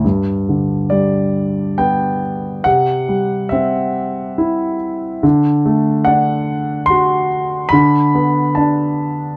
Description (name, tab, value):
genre	classical, lyrical solo piano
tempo	70 BPM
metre	3/4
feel	uneven beats, rubato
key	unclear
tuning	A4 = 440 Hz
part	warm concert grand piano	solo	0.0-9.4 s	G2 to C6	-16 LUFS	equal	none
room	light reverb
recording	dark, warm production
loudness	-16 LUFS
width	mono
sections	0.0-9.4 A section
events	none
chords	0.0 G; 2.7 C; 5.2 D; 7.7 Bm/D